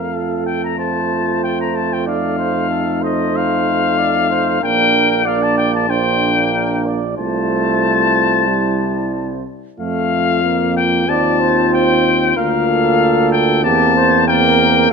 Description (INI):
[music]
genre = classical, brass quintet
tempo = 93 BPM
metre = 4/4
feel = straight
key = F major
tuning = A4 = 440 Hz
[part]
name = clear trumpet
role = melody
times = 0.0-14.9 s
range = Eb5 to Bb5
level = -17 LUFS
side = left 7 dB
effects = none
[part]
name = warm flugelhorn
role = second line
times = 0.0-14.9 s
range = G4 to D5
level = -22 LUFS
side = right 11 dB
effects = none
[part]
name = clear trombone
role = accompaniment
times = 0.0-14.9 s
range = G3 to C4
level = -22 LUFS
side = right 5 dB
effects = none
[part]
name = mellow French horn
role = accompaniment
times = 0.0-14.9 s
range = C4 to F4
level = -21 LUFS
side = left 4 dB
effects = none
[part]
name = warm tuba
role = bass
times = 0.0-14.9 s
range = Bb1 to F2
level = -21 LUFS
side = right 5 dB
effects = none
[sound]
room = light reverb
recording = none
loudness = -13 LUFS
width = side -5 dB against mid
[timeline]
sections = 0.0-14.9 A section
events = none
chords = 0.0 F; 2.1 F7; 4.6 Bb; 7.2 F/C; 8.5 C; 9.8 F; 11.1 F7/Eb; 12.4 Bb/D; 13.7 C7/E